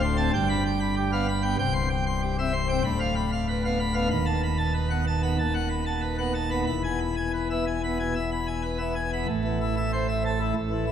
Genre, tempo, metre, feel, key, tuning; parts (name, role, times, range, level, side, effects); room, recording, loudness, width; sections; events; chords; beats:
classical, organ toccata; 95 BPM; 4/4; straight; A minor; A4 = 440 Hz
pipe organ, plenum; solo; 0.0-10.9 s; C1 to C6; -24 LUFS; equal
wet church reverb, RT60 3.3 s; -24 LUFS; side -9 dB against mid
0.0-9.3 A section; 9.3-10.9 B section
0.3 G7; 1.6 C; 2.9 Bdim/D; 4.1 B7/D#; 6.7 E; 9.3 Am
0.34 0.96 | 1.59 2.22 2.85 3.48 | 4.12 4.75 5.38 6.02 | 6.67 7.33 7.98 8.64 | 9.29 9.92 10.56